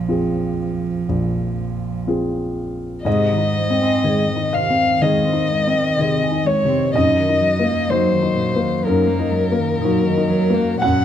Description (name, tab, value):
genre	neoclassical piano and strings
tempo	62 BPM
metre	4/4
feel	rubato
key	unclear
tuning	A4 = 440 Hz
part	warm cello	second line	0.0-11.0 s	Bb2 to C4	-24 LUFS	right 6 dB	none
part	warm baby grand piano	accompaniment	0.0-11.0 s	Bb1 to Gb5	-19 LUFS	left 2 dB	none
part	dark violin	melody	3.1-11.0 s	Bb4 to Gb5	-20 LUFS	left 3 dB	none
part	vibraphone with medium mallets	arpeggios	3.1-11.0 s	Eb4 to Ab5	-28 LUFS	right 8 dB	none
room	light reverb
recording	minimal, uncompressed stereo recording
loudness	-16 LUFS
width	side -10 dB against mid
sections	0.0-3.1 A section; 3.1-11.0 B section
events	none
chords	0.0 Fm/Bb; 3.1 Ab; 6.9 Ebm/Gb